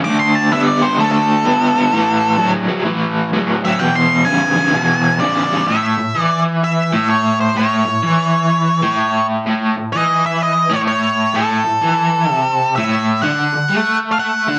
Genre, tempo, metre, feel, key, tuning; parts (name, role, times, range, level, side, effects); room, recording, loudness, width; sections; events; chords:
rock; 127 BPM; 4/4; swing 65% on 8ths; A major; A4 = 442 Hz
octave-fuzz lead guitar; melody; 0.0-14.6 s; A4 to D6; -18 LUFS; equal; distortion
raw garage guitar; riff; 0.0-14.6 s; E2 to B3; -18 LUFS; equal; overdrive, tremolo
moderate studio reverb, RT60 0.7 s; band playing live in one room; -16 LUFS; mono
0.0-5.7 A section; 5.7-14.6 B section
lead electric guitar solo 0.0-5.7
0.0 D5; 1.9 A5; 3.8 E7; 5.7 A; 13.2 D